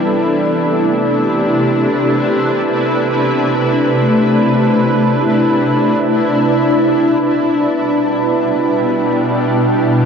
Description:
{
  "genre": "ambient",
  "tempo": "free time",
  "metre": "none",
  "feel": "none",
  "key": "unclear",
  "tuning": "A4 = 440 Hz",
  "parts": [
    { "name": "shimmering ambient pad", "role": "sustained chords", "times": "0.0-10.1 s", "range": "B2 to B4", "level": "-13 LUFS", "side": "equal", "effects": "chorus, built-in reverb" },
    { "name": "vibraphone with soft mallets", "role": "arpeggios", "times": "0.0-6.6 s", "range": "A3 to B5", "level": "-18 LUFS", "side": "left 1 dB", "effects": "diffuse ambient delay" },
    { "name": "bowed-like drone", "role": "drone", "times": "0.0-6.5 s", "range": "C3 to E3", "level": "-29 LUFS", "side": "equal", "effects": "none" }
  ],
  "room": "wet huge ambient reverb, RT60 7.8 s",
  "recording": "worn, warbling old tape, cassette tape, warbly pitch drift",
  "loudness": "-12 LUFS",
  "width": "side -6 dB against mid",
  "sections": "0.0-6.4 A section; 6.4-10.1 B section",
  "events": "fade-in on vibraphone 0.0-6.4",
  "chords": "0.0 Cmaj9; 6.4 Em7"
}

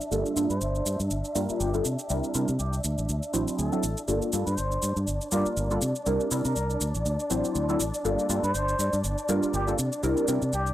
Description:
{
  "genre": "filtered disco house",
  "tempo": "121 BPM",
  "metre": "4/4",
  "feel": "swing 56% on 16ths",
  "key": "G dorian",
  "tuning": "A4 = 440 Hz",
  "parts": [
    { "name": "dark studio string section", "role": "sustained chords", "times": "0.0-10.7 s", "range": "D4 to E5", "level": "-33 LUFS", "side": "equal", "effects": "low-pass filter" },
    { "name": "shaker", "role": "drums", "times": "0.0-10.7 s", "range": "none", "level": "-34 LUFS", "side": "right 1 dB", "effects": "none" },
    { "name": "funky polysynth comp", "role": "accompaniment", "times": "0.1-10.4 s", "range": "F#3 to C5", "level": "-28 LUFS", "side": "equal", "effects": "chorus, phaser, low-pass filter" },
    { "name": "fingered electric bass", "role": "bass", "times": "0.1-10.7 s", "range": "G1 to C3", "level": "-29 LUFS", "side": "equal", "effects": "low-pass filter" },
    { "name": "muted trumpet section", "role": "melody", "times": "0.5-10.7 s", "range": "G4 to D5", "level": "-33 LUFS", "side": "equal", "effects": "low-pass filter" }
  ],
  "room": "digital ambience",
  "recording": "dry, gritty hardware recording",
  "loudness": "-25 LUFS",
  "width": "side -13 dB against mid",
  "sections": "0.0-10.7 A section",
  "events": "filter sweep 0.0-10.7",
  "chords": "0.1 Gm9; 1.9 C7; 2.8 D9; 4.1 Gm9; 5.8 C7; 6.8 D9; 8.1 Gm9; 9.8 C7"
}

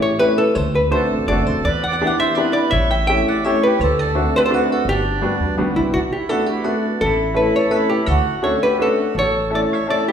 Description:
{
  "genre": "musette waltz",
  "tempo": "168 BPM",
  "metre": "3/4",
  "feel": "rubato",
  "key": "G major, B minor from 5.9 s",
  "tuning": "A4 = 439 Hz",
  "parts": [
    { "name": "archtop guitar, miked and amplified", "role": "melody", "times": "0.0-10.1 s", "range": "E4 to G5", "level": "-19 LUFS", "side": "left 1 dB", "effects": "none" },
    { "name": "bright upright piano", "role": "accompaniment", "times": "0.0-10.1 s", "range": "G3 to A4", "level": "-21 LUFS", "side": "left 1 dB", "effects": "none" },
    { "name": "upright bass", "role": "bass", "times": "0.6-9.6 s", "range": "E1 to E2", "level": "-24 LUFS", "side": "equal", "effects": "none" },
    { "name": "accordion", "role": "second line", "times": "0.9-10.1 s", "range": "C4 to E5", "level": "-23 LUFS", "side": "right 4 dB", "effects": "none" }
  ],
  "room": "wet recital hall reverb, RT60 1.5 s",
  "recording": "recorded in a church or concert hall",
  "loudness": "-16 LUFS",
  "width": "side -8 dB against mid",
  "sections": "0.0-5.9 A section; 5.9-10.1 B section",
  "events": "none",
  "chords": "0.0 A7; 0.6 D7; 1.6 Em7; 2.7 A7; 3.8 D7; 4.9 Gmaj7; 5.9 Bm7; 7.0 A; 8.1 Dmaj7; 9.1 A"
}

